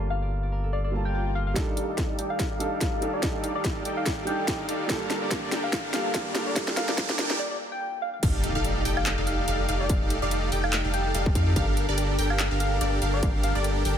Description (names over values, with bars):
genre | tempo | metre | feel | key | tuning
future bass | 144 BPM | 4/4 | swing 56% on 16ths, half-time | unclear | A4 = 440 Hz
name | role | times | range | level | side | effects
warm grand piano | accompaniment | 0.0-8.2 s | G3 to A5 | -34 LUFS | right 4 dB | sidechain pumping, digital delay
concert harp | arpeggios | 0.0-3.9 s | F4 to F5 | -41 LUFS | right 1 dB | sidechain pumping, digital delay
saturated sub bass | bass | 0.0-1.5, 8.2-14.0 s | F1 to F2 | -27 LUFS | equal | sidechain pumping
soft struck synth lead | melody | 0.1-13.6 s | D5 to G5 | -34 LUFS | left 2 dB | chorus, phaser, sidechain pumping, digital delay
swell, riser and impact | sound effects | 0.9-9.9 s | none | -35 LUFS | equal | none
dense compressed supersaw | riff | 1.6-14.0 s | D4 to G5 | -29 LUFS | equal | sidechain pumping, low-pass filter
electronic kick drum | drums | 1.6-13.3 s | none | -28 LUFS | equal | distortion
trap drum kit | drums | 1.6-13.9 s | crash cymbal, handclaps, hi-hat, snare drum, woodblock | -30 LUFS | equal | overdrive, low-pass filter on snare, low-pass filter on hats, low-pass filter on cymbals, low-pass filter on perc
wide unison pluck | arpeggios | 8.2-14.0 s | D5 to G5 | -36 LUFS | right 1 dB | phaser, sidechain pumping, digital delay
room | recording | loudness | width
light reverb, digital ambience | high-pass filter, low-pass filter | -24 LUFS | side -9 dB against mid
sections
0.0-1.6 A section; 1.6-8.2 B section; 8.2-14.0 C section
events
filter sweep 0.0-1.6, 1.6-8.2; swell 0.9-1.6; build-up 1.6-8.2; drum fill 1.6-7.4; filter sweep on supersaw synth 1.6-8.2; riser 3.1-7.4; break 7.4-8.2; drop 8.2-14.0; impact 8.2-9.9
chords
0.0 Gm9; 1.6 F13; 4.9 Gm9; 8.2 F13; 11.6 Gm9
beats
0.31 0.73 1.15 | 1.56 1.98 2.40 2.81 | 3.23 3.65 4.06 4.48 | 4.89 5.31 5.73 6.14 | 6.56 6.98 7.39 7.81 | 8.23 8.64 9.06 9.48 | 9.89 10.31 10.73 11.14 | 11.56 11.98 12.39 12.81 | 13.23 13.64